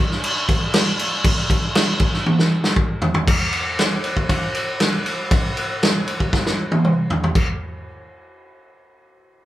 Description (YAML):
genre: rock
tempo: 118 BPM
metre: 4/4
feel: straight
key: none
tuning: none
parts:
  - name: vintage drum kit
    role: drums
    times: 0.1-7.5 s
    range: crash cymbal, kick drum, ride cymbal, snare drum, toms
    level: -17 LUFS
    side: equal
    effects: none
room: light reverb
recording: band playing live in one room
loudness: -17 LUFS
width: side -14 dB against mid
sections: 0.0-3.3 A section; 3.3-7.4 B section; 7.4-9.4 C section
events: drum fill 2.3-3.3, 6.3-7.4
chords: none